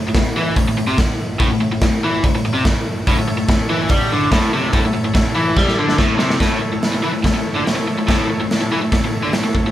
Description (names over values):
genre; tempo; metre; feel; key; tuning
garage rock duo or trio; 144 BPM; 4/4; straight; A mixolydian; A4 = 439 Hz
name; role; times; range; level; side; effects
overdriven electric guitar; riff; 0.0-9.7 s; A2 to G3; -18 LUFS; left 1 dB; none
raw garage drum kit; drums; 0.1-9.6 s; hi-hat, kick drum, snare drum; -17 LUFS; equal; none
combo organ; sustained chords; 3.1-9.7 s; E4 to E5; -28 LUFS; right 1 dB; none
room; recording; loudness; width
light reverb; band playing live in one room; -15 LUFS; side -13 dB against mid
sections
0.0-6.4 A section; 6.4-9.7 B section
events
drum fill 5.6-6.4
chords
0.0 A